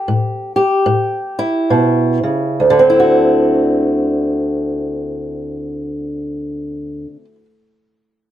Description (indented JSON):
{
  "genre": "blues",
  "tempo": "66-76 BPM",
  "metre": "4/4",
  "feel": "swing 60% on 8ths",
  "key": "D mixolydian",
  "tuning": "A4 = 439 Hz",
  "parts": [
    { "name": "fingerpicked old ladder-braced acoustic guitar", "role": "solo", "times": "0.0-7.5 s", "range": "D2 to G4", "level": "-14 LUFS", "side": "equal", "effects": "none" }
  ],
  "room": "light reverb",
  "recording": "close, detailed microphones",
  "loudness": "-13 LUFS",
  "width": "side -11 dB against mid",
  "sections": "0.0-2.6 A section; 2.6-6.3 B section",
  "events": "slowing down 0.0-2.6",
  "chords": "0.0 A7; 2.6 D9"
}